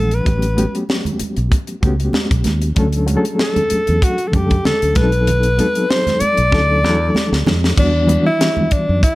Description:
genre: lush 1970s-style soul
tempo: 96 BPM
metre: 4/4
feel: swing 54% on 16ths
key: D major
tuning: A4 = 436 Hz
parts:
  - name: clear alto saxophone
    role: melody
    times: 0.0-9.2 s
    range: D4 to D5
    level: -18 LUFS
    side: left 1 dB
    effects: none
  - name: reed electric piano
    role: accompaniment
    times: 0.0-9.2 s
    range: D3 to F#5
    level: -20 LUFS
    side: left 1 dB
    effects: tremolo
  - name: fingered electric bass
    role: bass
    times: 0.0-9.0 s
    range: A1 to F#2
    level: -17 LUFS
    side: equal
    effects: none
  - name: tight funk drum kit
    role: drums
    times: 0.1-9.2 s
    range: crash cymbal, hi-hat, kick drum, snare drum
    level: -18 LUFS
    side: equal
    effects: none
  - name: congas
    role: percussion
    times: 0.3-8.9 s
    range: none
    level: -25 LUFS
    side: right 3 dB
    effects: none
room: small room ambience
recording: none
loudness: -13 LUFS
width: side -18 dB against mid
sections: 0.0-7.8 A section; 7.8-9.2 B section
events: drum fill 6.5-7.8; alto saxophone solo 7.8-9.2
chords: 0.3 A13; 2.8 Dmaj7; 5.0 B7b9; 6.5 Dmaj9; 7.8 Em9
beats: | 0.27 0.89 1.52 2.14 | 2.77 3.40 4.02 4.65 | 5.27 5.90 6.52 7.15 | 7.78 8.40 9.03

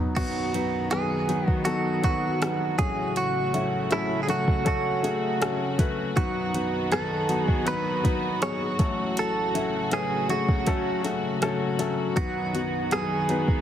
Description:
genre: pop ballad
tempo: 80 BPM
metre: 4/4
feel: straight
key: unclear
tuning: A4 = 440 Hz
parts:
  - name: warm grand piano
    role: accompaniment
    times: 0.0-13.6 s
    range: A1 to B4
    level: -28 LUFS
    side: left 3 dB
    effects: none
  - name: direct-recorded clean electric guitar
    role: melody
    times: 0.2-13.6 s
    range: E4 to C#5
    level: -28 LUFS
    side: right 4 dB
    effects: wide subtle chorus, digital delay
  - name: warm studio string section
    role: sustained chords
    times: 0.2-13.6 s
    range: C#3 to F#4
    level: -32 LUFS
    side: equal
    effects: none
  - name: smooth R&B drum kit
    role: drums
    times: 0.2-13.6 s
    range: crash cymbal, hi-hat, kick drum, rim click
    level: -28 LUFS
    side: equal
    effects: none
room: light reverb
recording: heavily compressed radio sound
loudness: -23 LUFS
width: side -10 dB against mid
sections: 0.2-13.6 A section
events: drum fill 0.0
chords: 0.2 B; 2.8 F#m/A; 6.2 B; 8.8 F#m/A; 12.2 B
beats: | 0.17 0.92 1.67 2.42 | 3.17 3.92 4.67 5.42 | 6.17 6.92 7.67 8.42 | 9.17 9.92 10.67 11.42 | 12.17 12.92

